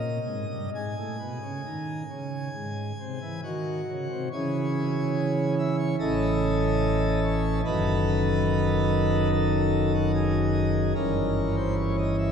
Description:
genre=classical, chorale-style piece for pipe organ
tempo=62-74 BPM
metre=4/4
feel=rubato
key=C# minor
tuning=A4 = 440 Hz
part: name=pipe organ, plenum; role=solo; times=0.0-12.3 s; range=F#1 to G#5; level=-24 LUFS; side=equal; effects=none
room=wet cathedral reverb, RT60 4.7 s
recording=dark, warm production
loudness=-24 LUFS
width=side -7 dB against mid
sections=0.0-4.3 A section; 4.3-12.3 B section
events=none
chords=0.0 D#/A#; 0.7 G#sus4; 2.5 G#; 4.3 C#m; 6.0 A; 7.6 D#dim/F#; 11.0 Gdim7

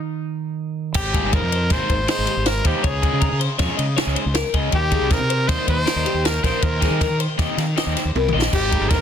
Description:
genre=math rock and midwest emo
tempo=158 BPM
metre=5/4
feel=straight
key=unclear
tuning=A4 = 440 Hz
part: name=twelve-string electric guitar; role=accompaniment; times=0.0-0.9 s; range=Eb3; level=-26 LUFS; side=right 8 dB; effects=lush chorus, plate reverb
part: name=fuzz fingered electric bass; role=bass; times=0.9-9.0 s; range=G1 to Eb3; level=-23 LUFS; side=equal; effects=overdrive
part: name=compact cocktail drum kit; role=drums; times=0.9-9.0 s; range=crash cymbal, kick drum, ride cymbal, snare drum, toms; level=-22 LUFS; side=equal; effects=none
part: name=bright trumpet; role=melody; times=1.0-9.0 s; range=G4 to C5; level=-24 LUFS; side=right 1 dB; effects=plate reverb, digital delay
part: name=twelve-string electric guitar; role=arpeggios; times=1.0-9.0 s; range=G4 to F5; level=-26 LUFS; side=left 6 dB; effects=lush chorus, plate reverb
part: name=crunchy overdriven guitar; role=riff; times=1.1-9.0 s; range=Eb3 to Ab4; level=-27 LUFS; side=right 1 dB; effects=spring reverb
room=light reverb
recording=dense, heavily limited modern master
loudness=-18 LUFS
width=side -8 dB against mid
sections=1.0-9.0 A section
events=stop 0.0-1.0; drum fill 8.1-8.5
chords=0.0 N.C.; 1.0 Abmaj9; 2.8 Dbsus2; 4.7 Eb6; 6.6 Cm7/Eb

